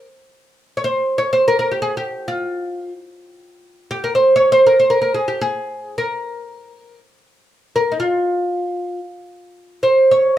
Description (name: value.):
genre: Turkish makam ensemble.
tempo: free time.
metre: none.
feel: none.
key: unclear.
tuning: A4 = 444 Hz.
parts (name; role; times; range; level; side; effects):
oud; solo; 0.0-10.4 s; Eb4 to Db5; -15 LUFS; equal; none.
room: wet studio ambience, RT60 0.5 s.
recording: heard from further back in the room.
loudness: -15 LUFS.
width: side -12 dB against mid.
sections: 0.0-9.5 A section.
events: none.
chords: none.